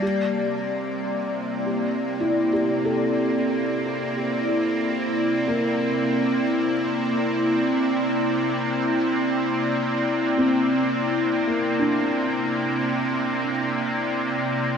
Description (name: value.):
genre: ambient.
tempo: 55 BPM.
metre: 4/4.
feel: straight.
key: unclear.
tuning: A4 = 440 Hz.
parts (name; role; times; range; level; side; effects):
evolving wavetable pad; sustained chords; 0.0-14.8 s; C3 to D5; -22 LUFS; equal; chorus, built-in reverb.
felt-muted upright piano; arpeggios; 0.0-14.8 s; Bb3 to A4; -28 LUFS; left 1 dB; tape echo.
room: wet huge ambient reverb, RT60 8.4 s.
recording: none.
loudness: -21 LUFS.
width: side -7 dB against mid.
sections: 0.0-14.8 A section.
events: none.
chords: 0.0 C9.